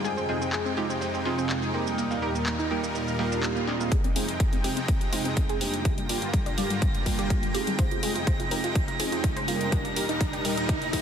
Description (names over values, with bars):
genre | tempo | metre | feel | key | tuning
progressive house | 124 BPM | 4/4 | straight | F dorian | A4 = 444 Hz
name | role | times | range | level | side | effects
supersaw pad | sustained chords | 0.0-11.0 s | Eb2 to G5 | -32 LUFS | equal | sidechain pumping
analog pluck | arpeggios | 0.0-11.0 s | G3 to C5 | -32 LUFS | equal | chorus, sidechain pumping, digital delay
chorused polysynth | stabs | 0.0-11.0 s | G3 to C5 | -32 LUFS | right 2 dB | sidechain pumping, digital delay
breakbeat sampler-style drum kit | drums | 0.0-3.8 s | hi-hat, snare drum | -41 LUFS | equal | none
house drum kit | drums | 0.0-11.0 s | handclaps, hi-hat, shaker | -34 LUFS | equal | sidechain pumping on perc, low-pass filter on perc, studio reverb, low-pass filter on snare, sidechain pumping on hats, low-pass filter on hats
swell and riser | sound effects | 3.1-11.0 s | none | -38 LUFS | equal | none
electronic kick drum | drums | 3.9-11.0 s | none | -26 LUFS | equal | overdrive, studio reverb
twinkling granular texture | texture | 4.3-11.0 s | Bb6 | -35 LUFS | right 3 dB | built-in reverb, sidechain pumping
room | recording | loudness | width
light reverb, digital ambience | dense, heavily limited modern master, high-pass filter | -24 LUFS | side -8 dB against mid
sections
0.0-3.9 A section; 3.9-11.0 B section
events
swell 3.1-3.9; build-up 3.9-11.0; filter sweep on synth pluck 3.9-11.0; riser 4.0-11.0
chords
0.0 Fm7; 2.0 Eb; 3.9 Fm7; 5.9 Gm7; 7.8 Fm7; 9.7 Eb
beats
| 0.04 0.53 1.01 1.50 | 1.98 2.46 2.95 3.43 | 3.92 4.40 4.88 5.37 | 5.85 6.34 6.82 7.30 | 7.79 8.27 8.76 9.24 | 9.72 10.21 10.69